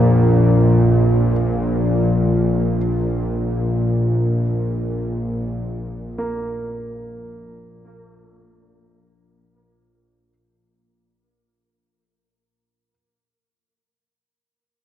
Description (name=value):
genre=dark ambient drone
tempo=free time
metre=none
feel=none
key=unclear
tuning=A4 = 440 Hz
part: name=dark concert grand piano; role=arpeggios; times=0.0-12.9 s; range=F2 to Bb3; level=-32 LUFS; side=right 2 dB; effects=none
part: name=bowed-like drone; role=drone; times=0.0-10.4 s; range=Bb1 to Bb2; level=-17 LUFS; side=equal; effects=built-in reverb
room=wet cathedral reverb, RT60 5.7 s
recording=worn, warbling old tape, cassette tape, warbly pitch drift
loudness=-16 LUFS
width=side -10 dB against mid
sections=0.0-10.3 A section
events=fade-out 0.0-10.3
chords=0.0 F5/Bb